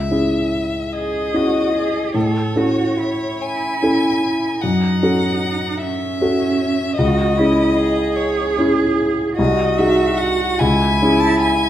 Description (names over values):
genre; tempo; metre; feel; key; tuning
classical, slow romantic movement for piano trio; 50 BPM (dotted quarters); 6/8; rubato; C# minor; A4 = 438 Hz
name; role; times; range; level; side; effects
rich violin; melody; 0.0-11.7 s; C#5 to A5; -22 LUFS; left 5 dB; none
warm grand piano; accompaniment; 0.0-11.7 s; B#1 to A4; -17 LUFS; equal; none
warm cello; second line; 0.9-11.7 s; C#4 to A4; -22 LUFS; right 5 dB; none
room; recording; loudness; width
wet recital hall reverb, RT60 1.3 s; none; -15 LUFS; side -11 dB against mid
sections
0.0-11.7 A section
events
none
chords
0.0 C#m; 2.2 A; 4.6 F#m; 7.0 C#m; 9.4 G#7/B#; 10.6 C#m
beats
0.94 | 2.15 3.43 | 4.63 5.83 | 7.00 8.18 | 9.39 10.60